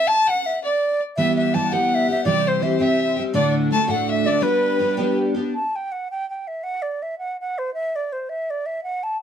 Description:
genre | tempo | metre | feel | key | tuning
celtic folk | 110 BPM (dotted quarters) | 6/8 | straight | G major | A4 = 437 Hz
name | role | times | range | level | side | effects
bright baroque flute | melody | 0.0-9.2 s | B4 to A5 | -22 LUFS | right 1 dB | plate reverb
clear fiddle | second line | 0.0-5.2 s | B4 to A5 | -26 LUFS | left 6 dB | none
picked twelve-string acoustic guitar | accompaniment | 1.2-5.5 s | D2 to G4 | -20 LUFS | equal | lush chorus
room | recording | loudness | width
moderate studio reverb, RT60 0.5 s | dark, warm production | -19 LUFS | side -8 dB against mid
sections
0.0-5.5 A section; 5.5-9.2 B section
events
none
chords
0.0 N.C.; 1.2 Em; 2.3 C; 3.3 D; 4.4 G; 5.5 N.C.

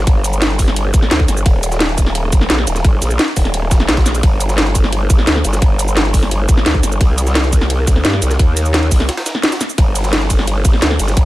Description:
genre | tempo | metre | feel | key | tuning
dark technical drum and bass | 173 BPM | 4/4 | straight | G minor | A4 = 441 Hz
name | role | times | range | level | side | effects
growl bass | bass | 0.0-11.3 s | Eb1 to G2 | -16 LUFS | equal | chorus, overdrive, sidechain pumping
drum and bass drum kit | drums | 0.1-11.2 s | cabasa, hi-hat, ride cymbal, snare drum | -17 LUFS | equal | none
electronic kick drum | drums | 0.1-11.2 s | none | -12 LUFS | equal | none
jungle sampler-style drum kit | drums | 0.1-11.3 s | ride cymbal, snare drum | -27 LUFS | right 1 dB | none
room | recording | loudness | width
little or no reverb | none | -12 LUFS | side -17 dB against mid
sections
0.0-11.3 A section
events
break 9.1-9.8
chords
none

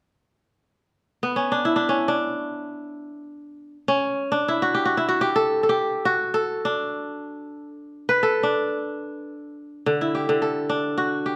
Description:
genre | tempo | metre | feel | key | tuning
west african traditional | free time | none | none | D major | A4 = 440 Hz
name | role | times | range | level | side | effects
kora | arpeggios | 1.2-11.4 s | D3 to B4 | -24 LUFS | equal | none
room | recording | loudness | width
moderate recital hall reverb, RT60 1.4 s | close, detailed microphones | -23 LUFS | mono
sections
1.0-9.9 A section; 9.9-11.4 B section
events
kora solo 1.0-9.9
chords
1.0 N.C.; 9.9 D

